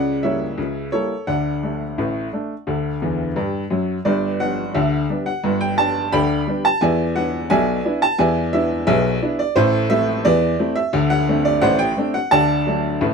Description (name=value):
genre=ragtime piano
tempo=87 BPM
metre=2/4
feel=straight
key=G major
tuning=A4 = 440 Hz
part: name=warm upright piano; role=solo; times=0.0-13.1 s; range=G1 to B5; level=-17 LUFS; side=equal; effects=none
room=light reverb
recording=close, detailed microphones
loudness=-17 LUFS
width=side -5 dB against mid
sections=0.0-4.1 A section; 4.1-13.1 B section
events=upright piano fill 3.0-4.1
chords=0.0 C#dim7; 1.3 D; 4.1 G; 6.8 E7; 9.6 Am; 10.9 D5; 12.3 D